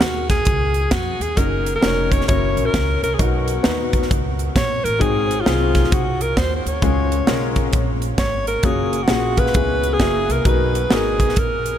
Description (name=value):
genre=uptempo gospel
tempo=132 BPM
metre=4/4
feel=swing 64% on 8ths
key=F# major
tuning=A4 = 440 Hz
part: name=bright alto saxophone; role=melody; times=0.0-11.8 s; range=E#4 to C#5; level=-22 LUFS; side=equal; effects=analog delay
part: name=upright bass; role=bass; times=0.0-11.8 s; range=E#1 to E#2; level=-23 LUFS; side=equal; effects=none
part: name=crisp fusion drum kit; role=drums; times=0.0-11.7 s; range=hi-hat, kick drum, snare drum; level=-20 LUFS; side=right 1 dB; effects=none
part: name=warm grand piano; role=accompaniment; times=1.4-11.5 s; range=G#2 to C#5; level=-23 LUFS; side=left 5 dB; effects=wide subtle chorus
room=moderate huge ambient reverb, RT60 6.1 s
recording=dreamy mix soaked in reverb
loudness=-16 LUFS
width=side -10 dB against mid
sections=0.0-11.8 A section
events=none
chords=0.5 C#; 1.4 F#6; 2.3 F#7; 3.2 Bmaj7; 5.0 G#7; 6.8 C#; 8.6 F#maj7; 9.5 C#m7; 10.0 F#9; 10.5 Bmaj7